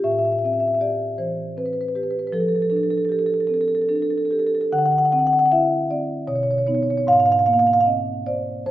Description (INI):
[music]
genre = classical, contemporary piece for solo marimba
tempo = 77 BPM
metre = 3/4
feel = rubato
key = unclear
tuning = A4 = 444 Hz
[part]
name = marimba with soft mallets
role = solo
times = 0.0-8.7 s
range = F2 to F#5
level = -18 LUFS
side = equal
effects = none
[sound]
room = moderate concert hall reverb, RT60 2.0 s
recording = close, detailed microphones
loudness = -18 LUFS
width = side -14 dB against mid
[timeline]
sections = 0.0-8.7 A section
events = none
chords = 0.0 Am7; 2.3 F69; 4.7 D9; 6.3 Badd9; 7.1 Abadd9